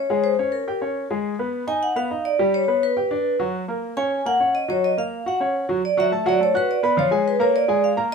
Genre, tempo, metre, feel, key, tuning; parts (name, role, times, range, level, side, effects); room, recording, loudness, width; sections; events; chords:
jazz; 209 BPM; 4/4; straight; F# major; A4 = 438 Hz
vibraphone with medium hard mallets; melody; 0.0-8.1 s; A#4 to G#5; -20 LUFS; equal
clear baby grand piano; accompaniment; 0.0-8.1 s; E#3 to F#6; -23 LUFS; equal
moderate studio ambience, RT60 0.5 s; minimal, uncompressed stereo recording; -19 LUFS; side -5 dB against mid
0.0-5.8 A section; 5.8-8.1 B section
0.1 G#add11; 0.7 G#sus24; 1.2 G#m; 2.4 G; 3.5 F#; 5.3 F#5; 5.8 Bm7; 7.0 A#m7/E#; 7.5 A#7